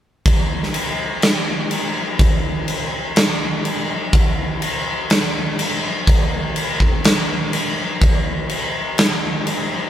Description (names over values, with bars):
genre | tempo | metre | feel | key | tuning
rock | 124 BPM | 4/4 | straight | none | none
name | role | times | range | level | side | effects
huge arena drum kit | drums | 0.3-9.6 s | crash cymbal, kick drum, snare drum | -16 LUFS | equal | none
room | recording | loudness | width
light reverb | band playing live in one room | -16 LUFS | side -11 dB against mid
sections
0.3-9.9 A section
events
none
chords
none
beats
| 0.25 0.74 1.22 1.71 | 2.19 2.68 3.16 3.65 | 4.13 4.62 5.10 5.59 | 6.07 6.56 7.04 7.53 | 8.01 8.50 8.98 9.47